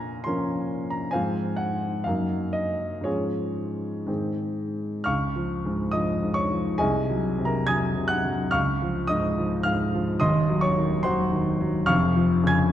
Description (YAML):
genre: classical, romantic character piece for solo piano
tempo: 58-73 BPM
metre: 2/4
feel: rubato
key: Db major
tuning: A4 = 441 Hz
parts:
  - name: warm grand piano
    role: solo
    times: 0.0-12.7 s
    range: Eb1 to Ab6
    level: -23 LUFS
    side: equal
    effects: none
room: moderate concert hall reverb, RT60 1.9 s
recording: dark, warm production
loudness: -23 LUFS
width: side -11 dB against mid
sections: 0.0-5.1 A section; 5.1-12.7 B section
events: none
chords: 0.0 Bbm; 1.1 Fm/Ab; 2.1 Ebm/Gb; 3.1 Db/Ab; 4.1 Ab; 5.1 Db; 6.8 Ab7/C; 8.5 Db; 10.2 Cdim/Eb; 11.9 Db/F